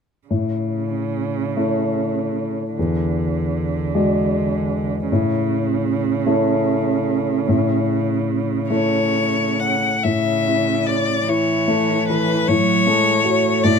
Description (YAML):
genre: classical, slow romantic movement for piano trio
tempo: 43-53 BPM (dotted quarters)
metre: 6/8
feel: rubato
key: A major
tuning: A4 = 441 Hz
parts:
  - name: rich cello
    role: second line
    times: 0.3-13.8 s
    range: C#3 to A3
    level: -24 LUFS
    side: right 10 dB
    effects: none
  - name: dark baby grand piano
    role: accompaniment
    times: 0.3-13.8 s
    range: E2 to D5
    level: -19 LUFS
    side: left 2 dB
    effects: none
  - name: rich violin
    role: melody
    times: 8.7-13.8 s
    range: B4 to F#5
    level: -20 LUFS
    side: left 4 dB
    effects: none
room: light reverb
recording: close, detailed microphones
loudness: -17 LUFS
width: side -6 dB against mid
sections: 0.3-10.0 A section; 10.0-13.8 B section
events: none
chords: 0.3 A; 2.8 E9; 5.1 A; 12.5 F#m/A